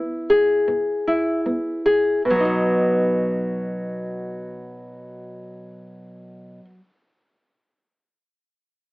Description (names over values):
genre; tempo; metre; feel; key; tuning
folk; 74 BPM; 4/4; straight; B major; A4 = 440 Hz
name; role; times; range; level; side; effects
nylon-string guitar; accompaniment; 0.0-6.8 s; B2 to G#4; -20 LUFS; left 1 dB; none
room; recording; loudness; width
light reverb; AM radio sound; -18 LUFS; side -20 dB against mid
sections
0.0-2.3 A section; 2.3-5.5 B section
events
slowing down 0.0-2.3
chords
0.0 E; 2.3 B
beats
0.67 1.45 | 2.26 3.08 3.89 4.71